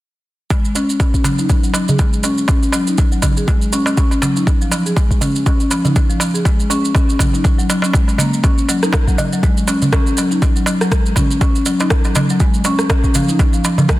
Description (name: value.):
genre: afro house.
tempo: 121 BPM.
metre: 4/4.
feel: swing 56% on 16ths.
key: unclear.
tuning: A4 = 440 Hz.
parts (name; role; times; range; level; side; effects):
marimba with soft mallets; arpeggios; 0.5-14.0 s; E#3 to G#4; -18 LUFS; left 1 dB; sidechain pumping, low-pass filter, dub echo.
electronic kick drum; drums; 0.5-14.0 s; none; -15 LUFS; equal; overdrive.
electronic shaker and rim click; drums; 0.5-14.0 s; none; -23 LUFS; right 2 dB; overdrive.
darbuka; percussion; 0.5-14.0 s; none; -21 LUFS; right 1 dB; none.
room: light reverb.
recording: dense, heavily limited modern master.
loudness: -13 LUFS.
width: side -16 dB against mid.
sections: 0.5-14.0 A section.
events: filter sweep on marimba 0.5-14.0.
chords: none.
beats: | 0.51 1.00 1.50 1.99 | 2.49 2.98 3.48 3.98 | 4.47 4.97 5.46 5.96 | 6.46 6.95 7.45 7.94 | 8.44 8.93 9.43 9.93 | 10.42 10.92 11.41 11.91 | 12.40 12.90 13.40 13.89.